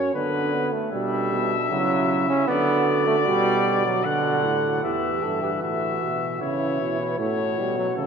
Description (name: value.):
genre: classical, imitative canzona for brass ensemble.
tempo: 76 BPM.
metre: 3/4.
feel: straight.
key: B minor.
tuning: A4 = 440 Hz.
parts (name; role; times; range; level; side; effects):
clear trumpet; melody; 0.0-8.1 s; A4 to F#5; -26 LUFS; left 7 dB; none.
dark flugelhorn; second line; 0.0-8.1 s; B3 to B4; -28 LUFS; right 6 dB; none.
clear trombone; accompaniment; 0.0-8.1 s; D3 to D4; -26 LUFS; right 2 dB; none.
warm bass trombone; bass; 0.0-8.1 s; E2 to D3; -27 LUFS; right 1 dB; none.
room: wet cathedral reverb, RT60 6.2 s.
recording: minimal, uncompressed stereo recording.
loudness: -20 LUFS.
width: side -6 dB against mid.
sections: 0.1-4.8 A section; 4.8-8.1 B section.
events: none.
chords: 0.1 Bm/D; 1.7 F#5/C#; 2.5 Bm/D; 4.1 Bm; 4.8 Em; 6.4 Bsus24; 7.2 F#m/A.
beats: | 0.14 0.93 1.71 | 2.49 3.27 4.05 | 4.84 5.63 6.42 | 7.20 7.98.